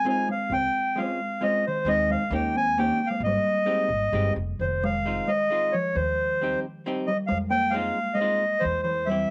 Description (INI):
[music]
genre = musette waltz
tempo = 133 BPM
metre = 3/4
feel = straight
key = Ab major, F minor from 4.6 s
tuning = A4 = 438 Hz
[part]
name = accordion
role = melody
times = 0.0-9.3 s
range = C5 to Ab5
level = -27 LUFS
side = equal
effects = none
[part]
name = kalimba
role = second line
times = 0.0-9.3 s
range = Eb3 to C4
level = -33 LUFS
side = equal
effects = cassette tape
[part]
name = hollow-body jazz guitar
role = accompaniment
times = 0.0-9.3 s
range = G3 to Ab4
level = -34 LUFS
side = equal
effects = cassette tape
[part]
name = upright bass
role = bass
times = 0.5-9.2 s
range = F1 to F2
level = -34 LUFS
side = equal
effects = none
[sound]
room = light reverb, small room ambience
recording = home recording on cassette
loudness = -25 LUFS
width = mono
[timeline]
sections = 0.0-4.6 A section; 4.6-9.3 B section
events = none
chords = 0.0 Ab6; 0.5 Dbmaj7; 1.9 Ab/Eb; 2.3 Eb7; 3.2 Abmaj7; 4.6 Fm7; 6.0 Cm/Eb; 7.3 Fm7; 8.7 C/E